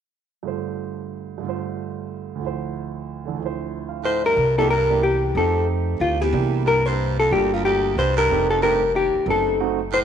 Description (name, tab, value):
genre	jazz, small-group swing and bop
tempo	184 BPM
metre	3/4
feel	swing 62% on 8ths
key	C mixolydian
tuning	A4 = 437 Hz
part	warm concert grand piano	accompaniment	0.4-9.8 s	D2 to F5	-27 LUFS	right 10 dB	none
part	bright baritone saxophone	second line	4.0-10.0 s	C2 to A2	-28 LUFS	right 9 dB	none
part	hollow-body jazz guitar	melody	4.1-10.0 s	F4 to C5	-20 LUFS	left 3 dB	none
part	upright bass	bass	4.4-10.0 s	F1 to F2	-24 LUFS	equal	none
room	moderate echo chamber reverb, RT60 2.0 s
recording	1960s-style stereo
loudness	-19 LUFS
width	side -8 dB against mid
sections	0.4-4.4 A section; 4.4-10.0 B section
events	none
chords	0.4 G7sus4; 2.4 Dm7; 4.4 C9; 5.3 F9; 6.3 C9; 7.3 Gm7; 8.0 C5; 8.3 F9; 9.3 F#dim7